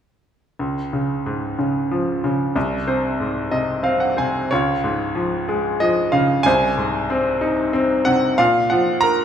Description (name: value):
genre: classical, lyrical solo piano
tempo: 93 BPM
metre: 3/4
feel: rubato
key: Db major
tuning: A4 = 441 Hz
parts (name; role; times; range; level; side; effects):
- bright grand piano; solo; 0.6-9.2 s; C2 to Bb5; -17 LUFS; equal; none
room: wet recital hall reverb, RT60 1.6 s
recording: recorded in a church or concert hall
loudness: -17 LUFS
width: side -8 dB against mid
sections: 0.6-4.5 A section; 4.5-9.2 B section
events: grand piano fill 2.6-4.5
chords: 0.6 Db; 2.6 Ab/C; 4.5 Db; 6.5 Ab/C; 8.4 Ebmadd9/Bb (rootless)